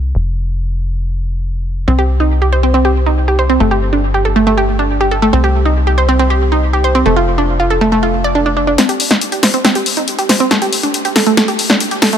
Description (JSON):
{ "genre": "uplifting trance", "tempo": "139 BPM", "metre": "4/4", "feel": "straight", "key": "C dorian", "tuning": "A4 = 438 Hz", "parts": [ { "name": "tight sequencer bass", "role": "bass", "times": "0.0-8.8 s", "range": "F1 to C2", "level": "-15 LUFS", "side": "left 1 dB", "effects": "none" }, { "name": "wide unison pluck", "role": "arpeggios", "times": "1.9-12.2 s", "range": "A3 to D5", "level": "-13 LUFS", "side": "right 2 dB", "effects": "dub echo" }, { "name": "punchy analog drum machine", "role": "drums", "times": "8.8-12.2 s", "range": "hi-hat, snare drum", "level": "-12 LUFS", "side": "left 2 dB", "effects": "overdrive, studio reverb" } ], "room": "light reverb, digital ambience", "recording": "high-pass filter", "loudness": "-11 LUFS", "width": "side -9 dB against mid", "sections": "0.0-8.8 A section; 8.8-12.2 B section", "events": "build-up 8.8-12.2; drum fill 8.8-12.2", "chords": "0.0 N.C.; 3.6 Gsus2; 5.3 N.C.; 7.1 F5; 8.8 Cm; 10.5 Gsus2" }